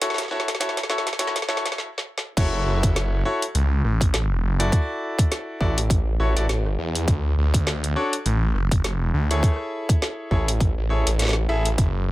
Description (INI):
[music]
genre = glitch hop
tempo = 102 BPM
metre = 4/4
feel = swing 57% on 16ths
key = unclear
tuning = A4 = 440 Hz
[part]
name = bright concert grand piano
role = stabs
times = 0.0-11.7 s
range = D4 to E5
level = -26 LUFS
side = left 1 dB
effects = sidechain pumping, digital delay
[part]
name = drum and bass drum kit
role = drums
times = 0.0-11.9 s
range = crash cymbal, hi-hat, rim click, snare drum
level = -27 LUFS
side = equal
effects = high-pass filter on snare, high-pass filter on hats, high-pass filter on cymbals, high-pass filter on room
[part]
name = phased detuned saw bass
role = bass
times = 2.4-12.1 s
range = F#1 to E2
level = -22 LUFS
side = equal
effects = phaser
[part]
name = electronic kick drum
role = drums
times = 2.4-11.9 s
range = none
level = -20 LUFS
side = equal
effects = none
[sound]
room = little or no reverb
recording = high-pass filter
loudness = -20 LUFS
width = side -17 dB against mid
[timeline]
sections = 0.0-2.4 A section; 2.4-12.1 B section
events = build-up 0.0-2.4; drum fill 0.0-1.8, 1.8-2.4; stop 1.8-2.4; drop 2.4-12.1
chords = 0.0 A6/E; 2.4 F#m7; 4.7 E9sus4; 7.1 Dmaj7; 9.4 Amaj7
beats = | 0.02 0.61 1.20 1.78 | 2.37 2.96 3.55 4.14 | 4.72 5.31 5.90 6.49 | 7.08 7.67 8.25 8.84 | 9.43 10.02 10.61 11.20 | 11.78